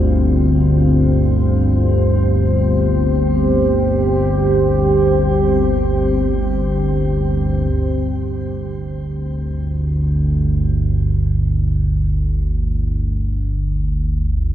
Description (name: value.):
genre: dark ambient drone.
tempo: free time.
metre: none.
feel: none.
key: unclear.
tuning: A4 = 440 Hz.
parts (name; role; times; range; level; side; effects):
deep dark ambient pad; sustained chords; 0.0-7.7 s; G3 to C5; -19 LUFS; equal; chorus, built-in reverb, shimmer reverb.
analog drone; drone; 0.0-14.5 s; G1 to D2; -16 LUFS; equal; chorus.
room: wet cathedral reverb, RT60 5.2 s.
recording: in a vast, echoing space.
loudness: -15 LUFS.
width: side -11 dB against mid.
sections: 0.0-7.7 A section; 7.7-14.5 A section.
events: none.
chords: 0.0 G5.